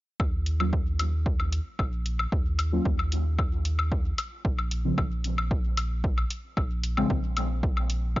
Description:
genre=dub techno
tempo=113 BPM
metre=4/4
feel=straight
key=Eb dorian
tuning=A4 = 439 Hz
part: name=warm sub bass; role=bass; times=0.2-8.2 s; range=Bb1 to Eb2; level=-28 LUFS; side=equal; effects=tube saturation, sidechain pumping
part: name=electronic kick drum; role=drums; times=0.2-8.2 s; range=none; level=-28 LUFS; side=equal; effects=overdrive
part: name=woodblock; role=percussion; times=0.2-8.2 s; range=none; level=-32 LUFS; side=left 3 dB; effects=overdrive, sidechain pumping on perc, dub echo
part: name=electronic hi-hat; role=drums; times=0.5-8.0 s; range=none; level=-35 LUFS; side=equal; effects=none
part: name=deep mellow chord stab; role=stabs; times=0.6-7.2 s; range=Db3 to F4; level=-31 LUFS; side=equal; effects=chorus, phaser, sidechain pumping, dub echo
room=little or no reverb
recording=dry, gritty hardware recording, nothing above 7.5 kHz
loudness=-25 LUFS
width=side -17 dB against mid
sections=0.2-8.2 A section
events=none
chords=0.2 Ebm9; 4.4 Bbm9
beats=| 0.20 0.73 1.26 1.79 | 2.32 2.85 3.38 3.92 | 4.45 4.98 5.51 6.04 | 6.57 7.10 7.63 8.16

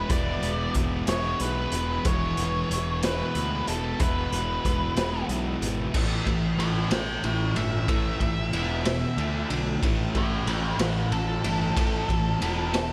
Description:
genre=quiet-loud alternative rock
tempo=62 BPM (dotted quarters)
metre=6/8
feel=straight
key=A major from 5.9 s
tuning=A4 = 440 Hz
part: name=octave-fuzz lead guitar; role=melody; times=0.0-12.9 s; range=C#4 to A5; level=-33 LUFS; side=equal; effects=distortion, slapback echo
part: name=twelve-string electric guitar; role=arpeggios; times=0.0-12.9 s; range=E2 to A4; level=-39 LUFS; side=equal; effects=none
part: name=thick fuzz guitar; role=riff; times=0.0-12.9 s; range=A2 to E4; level=-34 LUFS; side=equal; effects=distortion, slapback echo
part: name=thick fuzz guitar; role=riff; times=0.0-12.9 s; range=E2 to D4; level=-36 LUFS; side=equal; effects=none
part: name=fuzz picked electric bass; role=bass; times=0.0-12.9 s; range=E1 to D2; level=-33 LUFS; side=equal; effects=overdrive
part: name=raw garage drum kit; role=drums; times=0.1-12.9 s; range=crash cymbal, hi-hat, kick drum, ride cymbal, snare drum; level=-31 LUFS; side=equal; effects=none
room=moderate lush hall reverb, RT60 2.4 s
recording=big arena sound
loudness=-26 LUFS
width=mono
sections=0.0-5.9 A section; 5.9-12.9 B section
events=lead electric guitar solo 5.9-12.9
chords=0.0 E; 5.9 A; 8.5 E5; 9.2 D5; 9.8 A; 12.4 E5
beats=| 0.10 1.08 | 2.05 3.03 | 4.00 4.97 | 5.95 6.92 | 7.89 8.86 | 9.83 10.80 | 11.76 12.73

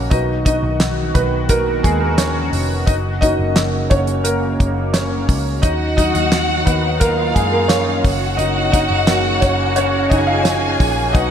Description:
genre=piano-driven pop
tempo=87 BPM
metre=4/4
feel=straight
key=unclear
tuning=A4 = 442 Hz
part: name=warm upright piano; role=accompaniment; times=0.0-11.3 s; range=Gb3 to F5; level=-19 LUFS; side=right 1 dB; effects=analog chorus
part: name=sweeping resonant pad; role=sustained chords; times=0.0-11.3 s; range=B2 to F#4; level=-25 LUFS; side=equal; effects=chorus
part: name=vintage muted picked electric bass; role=bass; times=0.0-11.3 s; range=F1 to Gb2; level=-21 LUFS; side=equal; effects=none
part: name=damped 70s drum kit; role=drums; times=0.1-11.3 s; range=handclaps, hi-hat, kick drum, snare drum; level=-18 LUFS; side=equal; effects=none
part: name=warm studio violin section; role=second line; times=5.6-11.3 s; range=F4 to Ab5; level=-20 LUFS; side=left 1 dB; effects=none
room=moderate lush hall reverb, RT60 2.8 s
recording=bright 1980s-style digital production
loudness=-14 LUFS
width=side -8 dB against mid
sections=0.0-11.3 A section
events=upright piano solo 0.0-11.3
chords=0.1 B; 2.9 Gb; 5.6 Ebmadd9; 8.0 Gb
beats=| 0.12 0.81 1.50 2.19 | 2.88 3.56 4.25 4.94 | 5.63 6.32 7.01 7.70 | 8.39 9.08 9.77 10.46 | 11.14

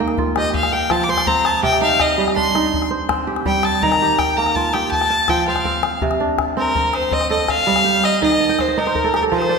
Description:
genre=west african traditional, West African string and xylophone music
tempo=109 BPM (dotted quarters)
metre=12/8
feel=straight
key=C dorian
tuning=A4 = 438 Hz
part: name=kora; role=arpeggios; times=0.0-9.6 s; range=C3 to A5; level=-20 LUFS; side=right 4 dB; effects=none
part: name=calabash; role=percussion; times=0.1-9.5 s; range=none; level=-24 LUFS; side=left 5 dB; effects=none
part: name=clear fiddle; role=melody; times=0.4-9.6 s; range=Bb4 to D6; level=-18 LUFS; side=left 1 dB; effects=none
room=wet scoring stage reverb, RT60 1.6 s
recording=recorded in a church or concert hall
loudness=-15 LUFS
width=side -5 dB against mid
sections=0.0-6.0 A section; 6.0-9.6 B section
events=fiddle solo 0.0-6.0; kora fill 8.4-9.6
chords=0.0 Eb; 0.5 F5; 1.6 Cm; 3.8 Eb; 4.9 F; 6.0 C5; 8.2 Eb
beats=0.54 1.09 | 1.63 2.18 2.73 3.28 | 3.83 4.38 4.92 5.47 | 6.02 6.57 7.12 7.67 | 8.22 8.77 9.32

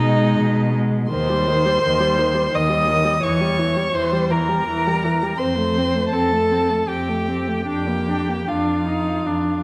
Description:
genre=classical, slow romantic movement for string quartet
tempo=73-86 BPM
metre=3/4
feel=rubato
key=unclear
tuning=A4 = 440 Hz
part: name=muted violin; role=melody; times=0.0-9.6 s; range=D#5 to Eb6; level=-28 LUFS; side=equal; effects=none
part: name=muted violin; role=second line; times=0.0-9.6 s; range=D#4 to Eb5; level=-25 LUFS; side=equal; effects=none
part: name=muted viola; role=accompaniment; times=0.0-9.6 s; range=Eb3 to Eb4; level=-25 LUFS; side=equal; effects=none
part: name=muted cello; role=bass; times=0.0-9.6 s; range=Eb2 to B2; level=-26 LUFS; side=equal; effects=none
room=moderate scoring stage reverb, RT60 2.0 s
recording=none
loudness=-20 LUFS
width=mono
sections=0.0-9.6 A section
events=none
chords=0.0 G#m/B; 1.1 Cm/Eb; 3.2 Edim7; 5.4 F; 7.7 Bb/F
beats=0.39 | 1.11 1.83 2.54 | 3.24 3.95 4.67 | 5.39 6.12 6.88 | 7.68 8.48 9.26

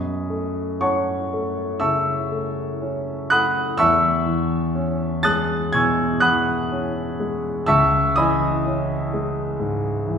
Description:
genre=classical, impressionist solo piano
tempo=58-64 BPM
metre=4/4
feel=rubato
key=E major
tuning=A4 = 440 Hz
part: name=warm concert grand piano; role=solo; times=0.0-10.2 s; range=C#2 to A6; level=-19 LUFS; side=equal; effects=none
room=wet recital hall reverb, RT60 1.7 s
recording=heard from further back in the room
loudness=-19 LUFS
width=side -7 dB against mid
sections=0.0-10.2 A section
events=none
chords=0.0 F#m7; 3.8 E6; 7.7 C#madd9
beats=0.82 1.82 2.83 | 3.81 4.76 5.75 6.72 | 7.68 8.65 9.60

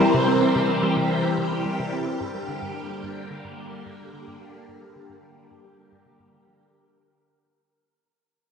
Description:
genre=ambient, sequencer-driven space music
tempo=109 BPM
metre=4/4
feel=straight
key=unclear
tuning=A4 = 440 Hz
part: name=phased string machine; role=sustained chords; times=0.0-6.6 s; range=D3 to G4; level=-24 LUFS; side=equal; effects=ensemble chorus, phaser
part: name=hollow square pluck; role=riff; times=0.0-6.6 s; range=G2 to D4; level=-29 LUFS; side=equal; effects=chorus, vintage 12-bit sampler grit, analog delay
part: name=wind-like tuned noise texture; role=texture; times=0.0-6.6 s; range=Bb4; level=-30 LUFS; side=equal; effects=built-in reverb
room=wet echo chamber reverb, RT60 2.3 s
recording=echo-heavy mix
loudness=-21 LUFS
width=side -6 dB against mid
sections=0.0-6.6 A section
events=fade-out on synth arpeggio sound 0.0-6.6; fade-out 0.0-6.6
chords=0.0 C; 2.2 Gm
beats=| 0.00 0.56 1.10 1.66 | 2.21 2.76 3.31 3.86 | 4.41 4.96 5.51 6.06

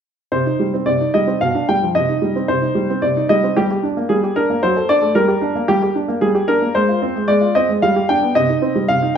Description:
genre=classical-period piano sonatina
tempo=112 BPM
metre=3/4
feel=rubato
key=C minor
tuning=A4 = 440 Hz
part: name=clear baby grand piano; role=solo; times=0.3-9.2 s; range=B2 to G5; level=-14 LUFS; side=equal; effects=none
room=moderate recital hall reverb, RT60 1.7 s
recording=minimal, uncompressed stereo recording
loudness=-14 LUFS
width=side -8 dB against mid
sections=0.3-9.2 A section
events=none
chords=0.3 Cm; 1.4 G7/B; 2.0 Cm; 3.6 Gm; 4.6 D7/F#; 5.2 Gm; 6.7 Fm/Ab; 7.8 G; 8.4 Cm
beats=| 0.32 0.87 1.42 | 1.96 2.49 3.03 | 3.57 4.11 4.64 | 5.16 5.69 6.22 | 6.75 7.28 7.82 | 8.35 8.89

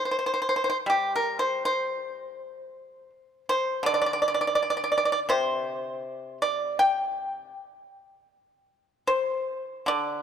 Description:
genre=chinese traditional, Chinese solo plucked strings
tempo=80 BPM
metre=4/4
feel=rubato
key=unclear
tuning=A4 = 440 Hz
part: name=pipa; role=solo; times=0.0-10.2 s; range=C3 to G5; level=-24 LUFS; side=equal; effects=none
room=moderate concert hall reverb, RT60 2.4 s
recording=none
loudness=-24 LUFS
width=side -8 dB against mid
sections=0.0-9.9 A section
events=none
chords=none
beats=0.13 | 0.88 1.63 2.37 3.10 | 3.84 4.57 5.30 6.04 | 6.79 7.54 8.30 9.09 | 9.88

